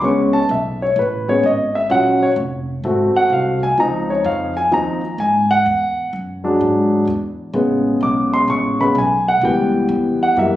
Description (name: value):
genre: jazz, big band swing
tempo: 128 BPM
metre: 4/4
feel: swing 66% on 8ths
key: A major from 7.5 s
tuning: A4 = 440 Hz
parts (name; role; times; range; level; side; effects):
- warm concert grand piano; accompaniment; 0.0-10.6 s; C#3 to D6; -15 LUFS; equal; none
- upright bass; bass; 0.0-10.6 s; F1 to Ab2; -24 LUFS; equal; none
room: wet large studio reverb, RT60 1.3 s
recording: recorded on a phone in the room, club reverb, compression, nothing above 11.0 kHz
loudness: -15 LUFS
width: side -14 dB against mid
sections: 0.0-7.5 A section; 7.5-10.6 A section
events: grand piano solo 0.0-10.6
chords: 0.0 Amaj9; 1.9 Gbmaj7; 2.8 Ab7b9; 3.8 Dbmaj9; 5.7 E9; 7.5 Amaj9; 9.4 C#m7b5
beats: | 0.03 0.50 0.97 1.44 | 1.91 2.38 2.85 3.32 | 3.79 4.26 4.73 5.20 | 5.67 6.14 6.61 7.08 | 7.55 8.02 8.49 8.96 | 9.43 9.90 10.37